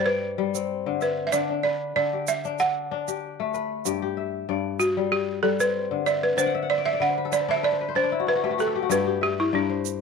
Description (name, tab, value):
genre	west african traditional, West African string and xylophone music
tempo	95 BPM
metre	4/4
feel	swing 54% on 16ths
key	G major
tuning	A4 = 438 Hz
part	balafon	melody	0.0-9.8 s	D4 to F#5	-24 LUFS	right 3 dB	none
part	kora	arpeggios	0.0-10.0 s	G2 to G5	-26 LUFS	left 9 dB	none
part	tube shaker	percussion	0.5-10.0 s	none	-33 LUFS	right 21 dB	none
room	moderate spring reverb, RT60 1.2 s, studio reverb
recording	1960s-style stereo with parts hard left and right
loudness	-22 LUFS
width	side -5 dB against mid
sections	0.0-3.9 A section; 3.9-10.0 B section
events	balafon solo 3.9-10.0; kora fill 6.4-8.9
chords	0.0 G; 1.3 D; 3.9 G; 6.4 D5; 8.9 G5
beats	0.06 0.69 | 1.33 1.96 2.59 3.23 | 3.86 4.49 5.12 5.75 | 6.38 7.01 7.64 8.27 | 8.90 9.54